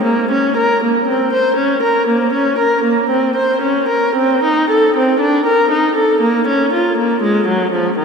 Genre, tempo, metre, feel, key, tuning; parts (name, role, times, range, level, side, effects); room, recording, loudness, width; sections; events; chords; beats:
classical, baroque-style suite movement for unaccompanied viola; 59 BPM; 4/4; rubato; Bb minor; A4 = 440 Hz
warm viola; solo; 0.0-8.0 s; Eb3 to C5; -12 LUFS; equal
wet cathedral reverb, RT60 5.9 s; minimal, uncompressed stereo recording; -12 LUFS; side -5 dB against mid
0.0-8.0 A section
| 0.04 1.07 2.08 3.10 | 4.17 5.21 6.21 7.21